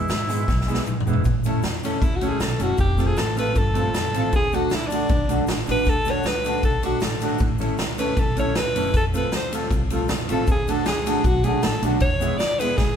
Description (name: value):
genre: ska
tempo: 156 BPM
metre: 4/4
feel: straight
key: A major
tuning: A4 = 440 Hz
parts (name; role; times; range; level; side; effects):
- breathy tenor saxophone; melody; 0.0-0.9 s; E4; -29 LUFS; equal; none
- mellow electric guitar; accompaniment; 0.0-12.7 s; G#3 to F#4; -27 LUFS; right 3 dB; phaser, slapback echo
- warm upright piano; stabs; 0.0-12.8 s; G#3 to A4; -31 LUFS; left 5 dB; none
- upright bass; bass; 0.0-13.0 s; E1 to G#2; -27 LUFS; equal; none
- street-band drum kit; drums; 0.1-12.9 s; hi-hat, kick drum, ride cymbal, snare drum, toms; -24 LUFS; equal; none
- cabasa; percussion; 0.1-12.9 s; none; -46 LUFS; left 5 dB; none
- bright alto saxophone; melody; 1.9-13.0 s; C#4 to D5; -25 LUFS; left 1 dB; none
room: moderate stone room reverb, RT60 1.0 s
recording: band playing live in one room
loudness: -19 LUFS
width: side -8 dB against mid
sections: 0.0-1.3 A section; 1.3-13.0 B section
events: drum fill 0.5-1.3, 12.8; alto saxophone solo 1.3-13.0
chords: 0.0 E; 1.3 A; 2.8 F; 4.3 D; 7.4 A; 8.9 F; 10.5 D; 12.0 E